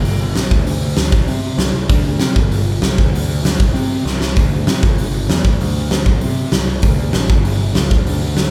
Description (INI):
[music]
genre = punk rock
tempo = 194 BPM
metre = 4/4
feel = straight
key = unclear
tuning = A4 = 440 Hz
[part]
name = fuzz picked electric bass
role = bass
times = 0.0-8.5 s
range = G1 to C3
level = -21 LUFS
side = equal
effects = overdrive
[part]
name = big rock drum kit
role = drums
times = 0.1-8.4 s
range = hi-hat, kick drum, snare drum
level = -17 LUFS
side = equal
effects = none
[sound]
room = light reverb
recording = band playing live in one room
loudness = -16 LUFS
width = mono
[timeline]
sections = 0.0-8.5 A section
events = drum fill 4.1-4.4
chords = none